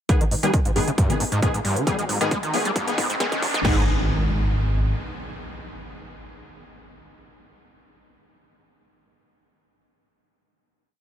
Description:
driving peak-time techno; 135 BPM; 4/4; straight; G# harmonic minor; A4 = 440 Hz
screaming distorted acid line; riff; 0.1-3.9 s; G2 to G#3; -27 LUFS; equal; distortion, analog chorus, cassette tape, sidechain pumping, tape echo
rave stab; stabs; 0.1-7.6 s; D#3 to G#4; -28 LUFS; left 2 dB; chorus, built-in reverb, sidechain pumping, tape echo
electronic kick drum; drums; 0.1-3.7 s; -23 LUFS; equal
techno drum kit; drums; 0.1-3.7 s; crash cymbal, hi-hat; -31 LUFS; right 2 dB
riser and impact; sound effects; 1.1-7.7 s; -30 LUFS; equal
dark detuned saw bass; bass; 0.2-4.9 s; D#1 to G#1; -26 LUFS; equal; sidechain pumping, high-pass filter
light reverb; high-pass filter; -20 LUFS; side -10 dB against mid
0.1-3.6 build; 3.6-7.2 final chord
build-up 0.1-3.6; filter sweep on acid bass 0.1-3.6; filter sweep 0.1-3.6; riser 1.1-3.6; drum fill 1.9-3.6
0.1 G#m

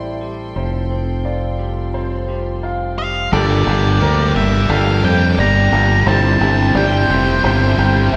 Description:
post-rock; 87 BPM; 4/4; straight; G dorian; A4 = 442 Hz
warm studio string section; sustained chords; 0.0-8.2 s; E4 to D6; -31 LUFS; equal
electric guitar through a small old amp; arpeggios; 0.0-3.3 s; F3 to F4; -31 LUFS; equal
felt-muted upright piano; arpeggios; 0.0-8.2 s; A4 to F5; -28 LUFS; equal
fingered electric bass; bass; 0.0-8.2 s; F1 to F2; -19 LUFS; equal
octave-fuzz lead guitar; melody; 3.0-8.1 s; D5 to Bb5; -21 LUFS; equal; distortion
distorted electric guitar; riff; 3.3-8.2 s; G3 to G4; -24 LUFS; equal; distortion
sludgy distorted guitar; riff; 3.3-8.2 s; G3 to G4; -23 LUFS; equal; overdrive
wet recital hall reverb, RT60 1.5 s; recorded in a church or concert hall; -16 LUFS; mono
0.0-3.3 A section; 3.3-8.2 B section
0.0 Am7; 0.6 Fadd9; 3.3 Gmadd9; 6.1 C

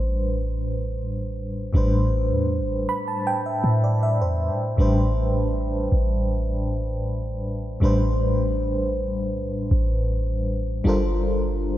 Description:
contemporary R&B; 79 BPM; 4/4; straight; A minor; A4 = 439 Hz
FM electric piano with tremolo; accompaniment; 0.0-11.8 s; A2 to B5; -24 LUFS; equal
clean 808-style bass; bass; 0.0-11.8 s; G1 to A2; -24 LUFS; equal
moderate lush hall reverb, RT60 3.0 s; dreamy mix soaked in reverb; -21 LUFS; side -14 dB against mid
0.0-11.8 A section
FM electric piano fill 2.5-4.8
0.0 Am11; 10.9 Gm11

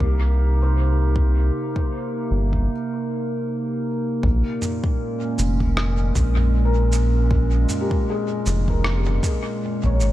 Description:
ambient dub; 78 BPM; 4/4; swing 57% on 16ths; Bb dorian; A4 = 441 Hz
warbly tape-like pad; sustained chords; 0.0-10.1 s; Bb2 to Bb4; -25 LUFS; right 1 dB; chorus, built-in reverb, vintage 12-bit sampler grit
felt-muted upright piano; arpeggios; 0.0-10.1 s; G4 to Db5; -31 LUFS; left 3 dB; lush chorus, analog delay
round analog bass; bass; 0.0-10.1 s; F1 to C2; -18 LUFS; equal
electronic kick drum; drums; 0.0-10.0 s; -23 LUFS; equal
lo-fi sampler-style drum kit; drums; 4.6-10.1 s; rim click, shaker, toms; -30 LUFS; equal; overdrive, dub echo
digital ambience; -19 LUFS; side -14 dB against mid
0.0-4.2 A section; 4.2-10.1 B section
break 2.7-4.2
0.0 Cm7; 4.2 Bbm7

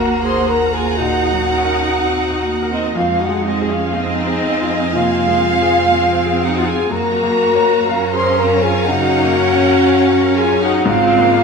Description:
cinematic; 61 BPM; 4/4; rubato; A4 = 440 Hz
rich studio violin section; melody; 0.0-11.4 s; Eb5 to C6; -24 LUFS; left 1 dB
flute section; second line; 0.0-11.4 s; Eb5 to C6; -21 LUFS; right 3 dB
rich studio violin section; second line; 0.0-11.4 s; Eb5 to Bb5; -24 LUFS; equal
clear baby grand piano; accompaniment; 0.0-11.4 s; Eb2 to Gb5; -24 LUFS; left 2 dB
rich studio viola section; accompaniment; 0.0-11.4 s; Db3 to Ab4; -22 LUFS; right 1 dB
dark French horn section; sustained chords; 0.0-11.4 s; Eb4 to C5; -18 LUFS; left 4 dB
clear studio cello section; bass; 0.0-11.4 s; Ab3 to Eb4; -23 LUFS; right 2 dB
rich studio double bass section; bass; 0.0-11.4 s; Ab1 to Gb2; -24 LUFS; right 6 dB
wet scoring stage reverb, RT60 2.0 s; -13 LUFS; side -5 dB against mid
0.0-11.4 A section
0.0 Ebm; 3.0 Fm; 6.9 Gbmaj7; 10.9 Abadd9

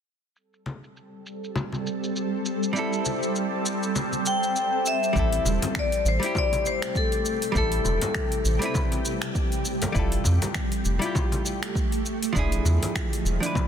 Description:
sunset chillout; 100 BPM; 4/4; swing 57% on 16ths; A minor; A4 = 440 Hz
shimmering ambient pad; sustained chords; 1.3-13.7 s; C3 to A4; -29 LUFS; right 1 dB; chorus, built-in reverb, phaser, shimmer reverb
smooth R&B drum kit; drums; 0.4-13.7 s; finger snaps, hi-hat, shaker; -33 LUFS; equal; low-pass filter on perc, low-pass filter on hats, soft clipping on snare, low-pass filter on snare
congas; percussion; 0.7-13.7 s; -32 LUFS; left 2 dB
hollow-body jazz guitar; accompaniment; 2.7-13.7 s; F3 to B4; -31 LUFS; moving between left 4 dB and right 4 dB; auto-pan, ping-pong delay, shimmer reverb
vibraphone with hard mallets; melody; 4.3-8.7 s; A4 to G5; -27 LUFS; left 4 dB; ping-pong delay, shimmer reverb
round analog bass; bass; 5.2-13.4 s; E1 to F2; -24 LUFS; equal
electronic kick drum; drums; 5.2-13.7 s; -28 LUFS; equal; overdrive
light reverb; dense, heavily limited modern master; -23 LUFS; side -8 dB against mid
0.4-5.2 A section; 5.2-13.7 B section
0.4 Am7; 10.0 Fmaj9; 12.1 E7b9

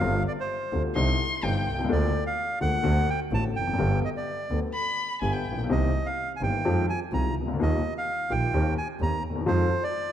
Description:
tango; 127 BPM; 4/4; rubato; C minor; A4 = 445 Hz
bandoneon; melody; 0.0-10.1 s; C5 to Bb5; -30 LUFS; right 2 dB
warm upright piano; accompaniment; 0.0-9.7 s; G1 to G4; -28 LUFS; left 4 dB
clear double bass; bass; 0.0-9.7 s; F1 to F2; -28 LUFS; right 2 dB
warm violin; second line; 1.0-1.8, 4.7-5.6 s; G5 to C6; -30 LUFS; left 1 dB
moderate scoring stage reverb, RT60 1.6 s; dark, warm production; -24 LUFS; side -10 dB against mid
0.0-10.1 A section
0.0 G7sus4; 1.0 Cmadd9; 1.9 Bb7/D; 2.8 D7; 3.8 G; 5.7 Cm7; 6.6 Fm7; 7.6 Ebadd9; 8.5 Cm7/Eb; 9.5 Fm7

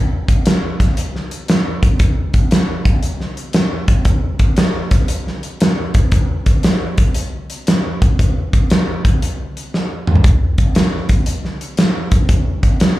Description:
rock; 116 BPM; 4/4; swing 66% on 8ths
big rock drum kit; drums; 0.3-13.0 s; hi-hat, kick drum, snare drum, toms; -14 LUFS; equal
light reverb; live gig heard through the venue's PA, club reverb; -13 LUFS; side -16 dB against mid
0.0-13.0 A section
drum fill 9.7-10.3

